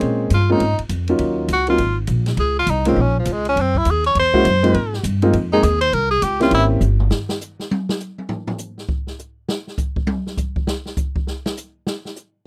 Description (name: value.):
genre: jazz, small-group swing and bop.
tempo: 202 BPM.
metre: 4/4.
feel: swing 62% on 8ths.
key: unclear.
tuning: A4 = 441 Hz.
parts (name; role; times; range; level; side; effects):
warm concert grand piano; accompaniment; 0.0-6.8 s; Gb3 to Ab4; -20 LUFS; equal; none.
upright bass; bass; 0.0-7.1 s; G1 to Bb2; -22 LUFS; equal; none.
open jazz drum kit; drums; 0.0-12.2 s; hi-hat, kick drum, ride cymbal, snare drum, toms; -27 LUFS; equal; none.
clear tenor saxophone; melody; 0.3-6.6 s; F3 to Db5; -21 LUFS; equal; none.
room: little or no reverb.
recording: dry, close 1970s-style studio recording.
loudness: -19 LUFS.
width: mono.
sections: 0.0-7.1 A section; 7.1-12.5 A section.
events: tenor saxophone solo 0.0-7.1; drum fill 6.8; drum solo 7.1-12.5.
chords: 0.0 Bbm9; 1.2 Ebm9; 1.8 Absus2; 2.4 Db6; 3.6 Gb9; 4.7 Ab69; 5.9 C7b9; 7.1 N.C..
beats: | 0.01 0.31 0.60 0.90 | 1.20 1.49 1.79 2.08 | 2.38 2.67 2.97 3.26 | 3.56 3.85 4.15 4.45 | 4.74 5.04 5.33 5.63 | 5.93 6.22 6.52 6.82 | 7.11 7.41 7.71 8.00 | 8.30 8.60 8.89 9.19 | 9.49 9.78 10.08 10.38 | 10.67 10.97 11.27 11.56 | 11.86 12.16.